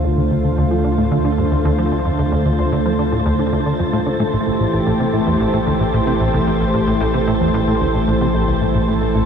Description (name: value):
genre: ambient, sequencer-driven space music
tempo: 112 BPM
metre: 4/4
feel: straight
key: D minor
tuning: A4 = 440 Hz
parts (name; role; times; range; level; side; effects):
- lush unison pad; sustained chords; 0.0-9.3 s; D3 to C5; -17 LUFS; equal; chorus
- plucky analog bass; riff; 0.0-9.2 s; A1 to F3; -20 LUFS; equal; lush chorus, ping-pong delay
- warm sub bass; bass; 0.0-9.3 s; A1 to D2; -23 LUFS; equal; none
- wind-like tuned noise texture; texture; 0.0-9.3 s; A5; -32 LUFS; right 3 dB; built-in reverb, analog chorus
room: moderate huge ambient reverb, RT60 7.7 s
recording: dreamy mix soaked in reverb, cassette tape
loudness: -15 LUFS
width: side -7 dB against mid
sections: 0.0-9.3 A section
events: fade-in on synth texture 0.0-9.3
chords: 0.0 Dm7; 4.3 Am7